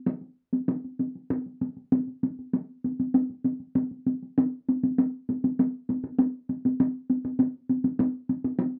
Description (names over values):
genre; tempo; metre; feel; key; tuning
japanese traditional; 99 BPM; 4/4; straight; none; none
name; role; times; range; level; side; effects
taiko ensemble; percussion; 0.1-8.7 s; none; -27 LUFS; equal; none
room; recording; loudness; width
moderate booth ambience, RT60 0.2 s; dry, close 1970s-style studio recording; -28 LUFS; mono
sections
0.0-4.4 A section; 4.4-8.8 B section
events
speeding up 0.0-8.8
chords
none